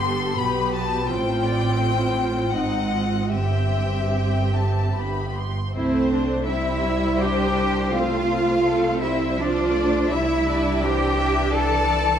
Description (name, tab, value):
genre	classical, slow romantic movement for string orchestra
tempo	71-86 BPM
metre	3/4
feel	rubato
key	C major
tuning	A4 = 440 Hz
part	rich chamber violin section	melody	0.0-12.2 s	A4 to C6	-28 LUFS	left 7 dB	none
part	rich chamber violin section	second line	0.0-12.2 s	A4 to C6	-28 LUFS	left 3 dB	none
part	rich studio viola section	accompaniment	0.0-12.2 s	E3 to G4	-25 LUFS	right 1 dB	none
part	clear chamber double bass section	bass	0.0-12.2 s	G1 to C2	-28 LUFS	right 2 dB	none
part	rich symphonic cello section	bass	0.0-12.2 s	G2 to A4	-24 LUFS	right 2 dB	none
room	moderate scoring stage reverb, RT60 1.7 s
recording	dark, warm production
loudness	-19 LUFS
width	side -9 dB against mid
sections	0.0-5.7 A section; 5.7-12.2 B section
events	none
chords	0.0 G; 1.1 F/A; 2.5 Ab7; 3.3 C/G; 5.0 G; 5.7 C; 7.9 F/C; 10.1 C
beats	0.38 | 1.08 1.80 2.54 | 3.34 4.17 4.96 | 5.74 6.47 7.21 | 7.94 8.66 9.38 | 10.11 10.83 11.54